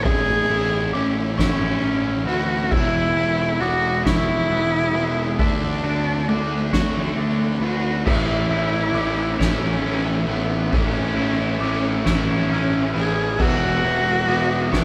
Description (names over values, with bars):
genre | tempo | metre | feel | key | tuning
post-rock | 45 BPM (dotted quarters) | 6/8 | straight | A major | A4 = 440 Hz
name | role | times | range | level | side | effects
dark cello | melody | 0.0-14.8 s | A3 to G#4 | -25 LUFS | equal | none
clean electric guitar | arpeggios | 0.0-14.8 s | B4 to D6 | -37 LUFS | equal | spring reverb
twangy electric guitar | arpeggios | 0.0-14.8 s | E2 to F#4 | -35 LUFS | equal | none
sludgy distorted guitar | riff | 0.0-14.8 s | A2 to F#4 | -30 LUFS | equal | overdrive
fuzz picked electric bass | bass | 0.0-14.8 s | E1 to D2 | -28 LUFS | equal | overdrive
soft-mallet drum kit | drums | 0.1-14.8 s | crash cymbal, kick drum, ride cymbal, snare drum | -27 LUFS | equal | none
overdriven semi-hollow guitar | riff | 8.0-14.8 s | A2 to E4 | -28 LUFS | equal | none
room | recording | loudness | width
moderate stone room reverb, RT60 1.0 s | band playing live in one room | -21 LUFS | mono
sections
0.0-14.8 A section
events
none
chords
0.0 Amaj7; 2.7 E; 5.4 D; 8.1 A; 13.4 Eadd9